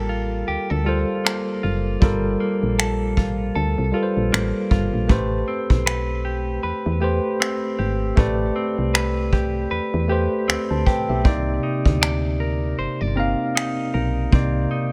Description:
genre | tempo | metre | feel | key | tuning
contemporary R&B | 78 BPM | 4/4 | swing 58% on 16ths | unclear | A4 = 440 Hz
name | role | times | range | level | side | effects
tine electric piano | accompaniment | 0.0-14.9 s | C3 to A5 | -26 LUFS | equal | none
clean electric guitar | arpeggios | 0.0-14.9 s | G3 to D5 | -31 LUFS | equal | digital delay
solid FM bass | bass | 0.0-14.7 s | F#1 to E2 | -26 LUFS | equal | none
vintage brush drum kit | drums | 1.3-14.5 s | finger snaps, kick drum | -22 LUFS | equal | none
room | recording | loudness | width
small room ambience | none | -22 LUFS | mono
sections
0.0-14.9 A section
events
none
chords
0.0 Gm9; 5.1 Am9; 11.2 Cm9

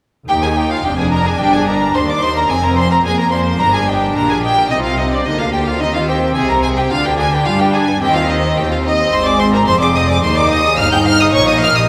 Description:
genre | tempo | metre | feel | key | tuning
classical, baroque-style concerto movement with solo episodes | 108 BPM | 4/4 | straight | Eb major | A4 = 440 Hz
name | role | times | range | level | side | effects
warm chamber violin section | melody | 0.3-11.8 s | D5 to G6 | -22 LUFS | equal | none
warm violin | melody | 0.3-11.9 s | D5 to G6 | -20 LUFS | equal | none
rich chamber violin section | second line | 0.3-11.8 s | D4 to G5 | -23 LUFS | equal | none
lute | accompaniment | 0.3-11.9 s | Eb2 to Eb5 | -28 LUFS | equal | none
warm chamber viola section | accompaniment | 0.3-11.9 s | Bb3 to Eb4 | -22 LUFS | equal | none
rich studio cello section | bass | 0.3-11.9 s | Eb2 to G3 | -23 LUFS | equal | none
warm chamber double bass section | bass | 0.3-11.9 s | F1 to G2 | -23 LUFS | equal | none
room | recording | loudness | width
wet scoring stage reverb, RT60 1.8 s | recorded in a church or concert hall | -14 LUFS | mono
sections
0.3-11.9 A section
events
none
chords
0.3 Eb; 2.5 Bb/F; 3.6 Eb/G; 4.7 Cm; 6.9 G/D; 8.0 Cm/Eb; 9.1 Ab; 11.3 Eb/Bb

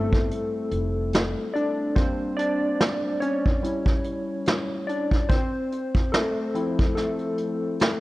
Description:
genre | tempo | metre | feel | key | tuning
lo-fi hip hop | 72 BPM | 4/4 | swing 56% on 16ths | unclear | A4 = 440 Hz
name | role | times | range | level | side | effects
warm analog keys | accompaniment | 0.0-8.0 s | F3 to D5 | -26 LUFS | left 1 dB | chorus, low-pass filter
upright bass | bass | 0.0-1.3 s | F1 to G1 | -29 LUFS | equal | none
vintage brush drum kit | drums | 0.1-8.0 s | hi-hat, kick drum, snare drum | -23 LUFS | equal | none
room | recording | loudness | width
light reverb, small room ambience | worn, warbling old tape, cassette tape, warbly pitch drift | -22 LUFS | side -18 dB against mid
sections
0.0-8.0 A section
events
synth keys solo 0.0-8.0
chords
0.0 Fmaj7; 2.0 Gmadd11; 3.6 C#dim/G; 5.3 Dm9 (rootless)

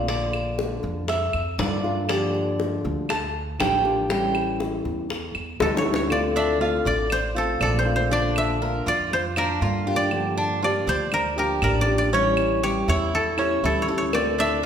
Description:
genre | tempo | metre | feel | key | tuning
latin, Cuban son and guajira | 120 BPM | 4/4 | straight | D minor | A4 = 440 Hz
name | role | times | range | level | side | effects
nylon-string guitar | accompaniment | 0.0-14.7 s | D3 to G4 | -26 LUFS | left 2 dB | none
Cuban tres | arpeggios | 0.0-14.7 s | C#4 to A5 | -27 LUFS | right 2 dB | none
upright bass | bass | 0.0-14.7 s | A1 to G2 | -28 LUFS | right 1 dB | none
bongos and cowbell | percussion | 0.1-6.1, 14.1-14.7 s | none | -28 LUFS | left 3 dB | none
claves | percussion | 0.3-14.4 s | none | -33 LUFS | right 2 dB | none
koto | melody | 5.6-14.7 s | A4 to E5 | -25 LUFS | equal | none
room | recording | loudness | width
wet recital hall reverb, RT60 1.5 s | recorded in a church or concert hall | -21 LUFS | side -8 dB against mid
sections
0.0-6.1 A section; 6.1-14.7 B section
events
Cuban tres solo 0.0-6.1; drum fill 5.6-6.1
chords
0.1 Bb; 2.1 Gm7; 4.1 A7; 6.1 Dm7; 8.1 Bb; 10.1 Gm7; 12.1 A7; 14.1 Dm7

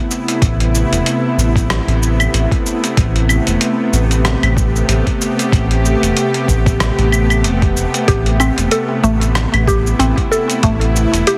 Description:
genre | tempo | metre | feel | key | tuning
organic downtempo | 94 BPM | 4/4 | swing 57% on 16ths | A minor | A4 = 442 Hz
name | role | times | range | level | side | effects
bowed-like drone | sustained chords | 0.0-11.4 s | C3 to G4 | -20 LUFS | equal | built-in reverb, sidechain pumping
dusty soul sampler-style drum kit | drums | 0.1-11.4 s | claves, hi-hat, rim click, shaker | -23 LUFS | equal | overdrive
round analog bass | bass | 0.4-11.2 s | E1 to A1 | -18 LUFS | equal | tube saturation
electronic kick drum | drums | 0.4-10.8 s | none | -19 LUFS | equal | overdrive
mallet-like synth pluck | arpeggios | 8.1-11.4 s | A3 to A4 | -19 LUFS | equal | chorus, delay
room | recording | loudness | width
moderate lush hall reverb, RT60 2.3 s | heavily compressed radio sound | -15 LUFS | mono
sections
0.0-11.4 A section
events
none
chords
0.0 Amadd9

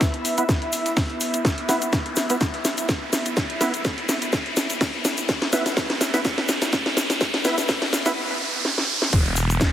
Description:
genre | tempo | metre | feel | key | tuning
bass house | 125 BPM | 4/4 | swing 54% on 16ths | unclear | A4 = 440 Hz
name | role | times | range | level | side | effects
breakbeat sampler-style drum kit | drums | 0.0-9.7 s | hi-hat, snare drum | -35 LUFS | equal | none
electronic kick drum | drums | 0.0-9.7 s | none | -23 LUFS | equal | none
garage drum kit | drums | 0.0-9.7 s | hi-hat, snare drum | -24 LUFS | equal | none
egg shaker | percussion | 0.0-9.7 s | none | -30 LUFS | left 3 dB | none
riser and downlifter | sound effects | 0.0-9.7 s | none | -28 LUFS | right 1 dB | none
airy breathy pad | texture | 0.0-9.7 s | B3 to B5 | -31 LUFS | equal | chorus, sidechain pumping
percussive organ stab | stabs | 0.4-8.1 s | B3 to E5 | -28 LUFS | right 1 dB | ensemble chorus, sidechain pumping, dub echo
phased detuned saw bass | bass | 9.1-9.7 s | E1 | -22 LUFS | equal | phaser, tube saturation, sidechain pumping
room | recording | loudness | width
moderate lush hall reverb, RT60 1.9 s, digital ambience | heavily compressed radio sound, high-pass filter | -20 LUFS | side -11 dB against mid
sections
0.0-9.1 A section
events
build-up 0.0-9.1; drum fill 0.0-8.2, 8.6-9.1; riser 0.0-9.1; filter sweep on synth stab 0.0-9.1; filter sweep 0.0-9.1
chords
0.0 E5

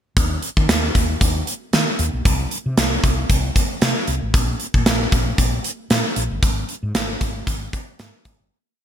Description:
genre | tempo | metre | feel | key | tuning
1980s-style pop | 115 BPM | 4/4 | swing 55% on 16ths | Eb major | A4 = 440 Hz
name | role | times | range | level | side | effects
woody fretless electric bass | bass | 0.2-8.5 s | G1 to D#3 | -23 LUFS | equal | none
gated 80s drum kit | drums | 0.2-8.4 s | hi-hat, kick drum, snare drum | -18 LUFS | equal | gated reverb
room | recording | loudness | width
light reverb | bright 1980s-style digital production | -17 LUFS | side -9 dB against mid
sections
0.2-8.5 verse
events
fade-out 6.4-8.5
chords
none

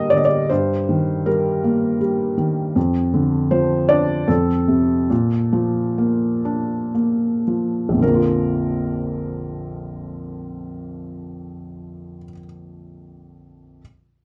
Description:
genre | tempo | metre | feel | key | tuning
classical, lyrical solo piano | 53-81 BPM | 3/4 | rubato | Bb major | A4 = 439 Hz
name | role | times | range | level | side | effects
felt-muted upright piano | solo | 0.0-13.8 s | Bb1 to Eb5 | -20 LUFS | equal | none
room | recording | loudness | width
light reverb | dark, warm production | -19 LUFS | mono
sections
0.0-8.0 A section; 8.0-11.3 B section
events
slowing down 2.8-8.0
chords
0.0 Gm; 0.5 Eb/G; 2.8 Dm7/F; 4.3 F; 5.1 Bb

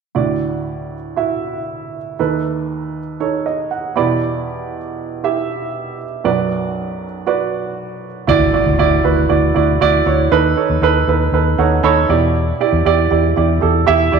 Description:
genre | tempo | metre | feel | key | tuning
pop | 118 BPM | 4/4 | straight | D major | A4 = 440 Hz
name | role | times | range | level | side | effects
warm upright piano | accompaniment | 0.1-14.2 s | B1 to B5 | -16 LUFS | right 6 dB | none
vintage muted fingered electric bass | bass | 8.3-14.2 s | D2 to E2 | -17 LUFS | left 3 dB | none
impact | sound effects | 8.3-10.3 s | none | -25 LUFS | left 3 dB | none
room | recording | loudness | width
wet echo chamber reverb, RT60 2.0 s | none | -14 LUFS | side -5 dB against mid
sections
0.1-8.3 A section; 8.3-14.2 B section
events
upright piano fill 3.2-4.2, 11.3-12.4; impact 8.3-10.3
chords
0.1 Dadd9; 2.2 B7/D#; 4.0 Em7; 6.3 Bm; 8.3 Dadd9; 10.3 B7/D#; 12.1 Em7

